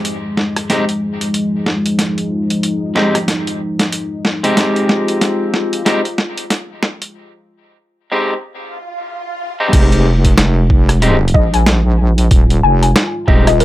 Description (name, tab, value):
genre	glitch hop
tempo	93 BPM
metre	4/4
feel	swing 60% on 16ths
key	F minor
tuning	A4 = 438 Hz
part	dark analog pad	sustained chords	0.0-13.6 s	F3 to F4	-21 LUFS	left 1 dB	chorus, sidechain pumping
part	boom bap sampler-style drum kit	drums	0.0-13.6 s	crash cymbal, hi-hat, rim click, snare drum	-17 LUFS	equal	none
part	electric guitar at the edge of break-up	stabs	0.7-13.5 s	Ab3 to G4	-18 LUFS	equal	vintage 12-bit sampler grit, sidechain pumping, digital delay
part	swell	sound effects	8.6-9.7 s	none	-26 LUFS	right 1 dB	none
part	wobble bass	bass	9.7-13.6 s	Eb1 to Bb1	-12 LUFS	equal	chorus, overdrive
part	electronic kick drum	drums	9.7-13.4 s	none	-12 LUFS	equal	none
part	woody wave-folded pluck	melody	11.3-13.6 s	Bb4 to Ab5	-17 LUFS	left 4 dB	wide subtle chorus, digital delay
room	moderate small room reverb, RT60 0.5 s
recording	high-pass filter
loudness	-12 LUFS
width	side -15 dB against mid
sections	0.0-9.7 A section; 9.7-13.6 B section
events	build-up 0.0-9.7; drum fill 0.0-7.2; break 7.2-9.7; swell 8.6-9.7; drop 9.7-13.6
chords	0.0 Fm7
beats	0.05 0.70 1.34 | 1.99 2.63 3.28 3.92 | 4.57 5.21 5.86 6.50 | 7.15 7.79 8.44 9.09 | 9.73 10.38 11.02 11.67 | 12.31 12.96 13.60